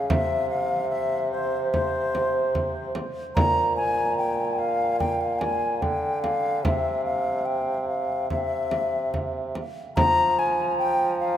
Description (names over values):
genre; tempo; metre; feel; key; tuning
classical, renaissance-style consort dance; 73 BPM; 4/4; straight; unclear; A4 = 443 Hz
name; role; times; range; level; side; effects
baroque flute; melody; 0.0-11.4 s; C5 to Bb5; -24 LUFS; left 1 dB; none
warm bassoon; bass; 0.0-11.4 s; Bb2 to F3; -28 LUFS; right 2 dB; none
frame drum; percussion; 0.1-10.4 s; none; -30 LUFS; right 1 dB; none
room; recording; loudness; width
wet cathedral reverb, RT60 6.7 s; in a vast, echoing space; -22 LUFS; side -10 dB against mid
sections
0.0-10.0 A section; 10.0-11.4 A section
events
none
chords
0.1 C; 3.4 Bb; 6.6 C; 10.0 Db6 (rootless)